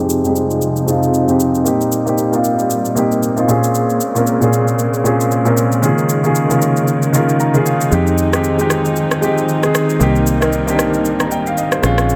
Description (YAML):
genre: amapiano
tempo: 115 BPM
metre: 4/4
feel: swing 58% on 16ths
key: F minor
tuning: A4 = 441 Hz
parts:
  - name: warm baby grand piano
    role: accompaniment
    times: 0.0-12.2 s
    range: F2 to Bb5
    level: -17 LUFS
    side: equal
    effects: low-pass filter
  - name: warm studio string section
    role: sustained chords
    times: 0.0-12.2 s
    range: Bb2 to Eb4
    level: -21 LUFS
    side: equal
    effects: low-pass filter
  - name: electronic shaker and rim click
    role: drums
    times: 0.1-12.2 s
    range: none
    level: -26 LUFS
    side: equal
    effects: none
  - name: fingered electric bass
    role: bass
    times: 7.9-12.2 s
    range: Bb1 to F2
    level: -21 LUFS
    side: equal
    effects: none
room: light reverb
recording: none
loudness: -15 LUFS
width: mono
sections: 0.0-12.2 A section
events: filter sweep 0.0-12.2; grand piano fill 7.1-7.9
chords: 0.0 Fm7; 1.7 Cm7; 3.5 Bbm9; 5.8 Eb7sus4; 7.9 Fm7; 10.0 Cm7